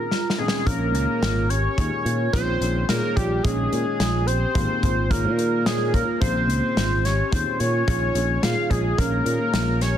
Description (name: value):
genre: progressive instrumental, band music in an uneven meter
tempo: 108 BPM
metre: 5/4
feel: straight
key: Bb dorian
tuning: A4 = 438 Hz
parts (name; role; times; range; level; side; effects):
- lead with added fifth; melody; 0.0-10.0 s; G4 to F5; -26 LUFS; equal; chorus, phaser, ping-pong delay
- dark concert grand piano; accompaniment; 0.0-9.7 s; Bb2 to Db4; -32 LUFS; left 4 dB; none
- vibraphone with soft mallets; arpeggios; 0.1-10.0 s; Bb3 to Ab4; -30 LUFS; moving between right 1 dB and right 9 dB; auto-pan
- loose indie drum kit; drums; 0.1-9.9 s; hi-hat, kick drum, snare drum; -25 LUFS; equal; none
- dark alto saxophone; second line; 0.4-10.0 s; G3 to F4; -30 LUFS; left 4 dB; none
- picked electric bass; bass; 0.7-10.0 s; Ab1 to Bb2; -24 LUFS; equal; none
room: light reverb, studio ambience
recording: dense, heavily limited modern master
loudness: -20 LUFS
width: side -10 dB against mid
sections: 0.7-10.0 A section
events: break 0.0-0.7; drum fill 0.1-0.7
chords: 0.0 Bbm7